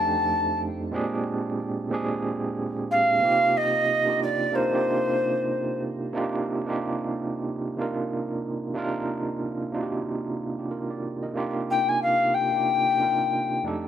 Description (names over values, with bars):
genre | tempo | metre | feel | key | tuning
R&B | 92 BPM | 4/4 | swing 59% on 16ths | C minor | A4 = 436 Hz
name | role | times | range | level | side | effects
mellow tenor recorder | melody | 0.0-5.8, 11.7-13.6 s | C5 to A5 | -22 LUFS | left 1 dB | none
overdriven tine electric piano | accompaniment | 0.0-13.9 s | F2 to Eb5 | -27 LUFS | right 3 dB | fast tremolo, plate reverb
room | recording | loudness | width
moderate studio reverb, RT60 0.6 s | rough home demo mix | -23 LUFS | side -10 dB against mid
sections
0.0-6.1 A section; 6.1-11.4 B section; 11.4-13.9 C section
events
none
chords
0.0 F13; 0.9 Bb13; 3.2 Cm7; 11.4 Cm9